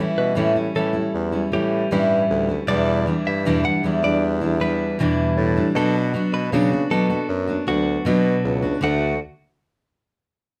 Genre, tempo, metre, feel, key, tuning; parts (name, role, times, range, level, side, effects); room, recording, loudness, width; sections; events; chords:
pop; 78 BPM; 4/4; straight; D major; A4 = 442 Hz
fingerpicked steel-string acoustic guitar; accompaniment; 0.0-9.1 s; E2 to F#4; -23 LUFS; equal
warm bassoon; bass; 0.0-9.2 s; C#2 to C#3; -26 LUFS; equal
direct-recorded clean electric guitar; arpeggios; 0.2-9.2 s; F#4 to F#5; -28 LUFS; equal
moderate studio reverb, RT60 0.5 s; -21 LUFS; mono
0.0-8.8 A section; 8.8-10.6 B section
0.0 A7; 2.7 Em7; 5.8 Bm; 8.8 D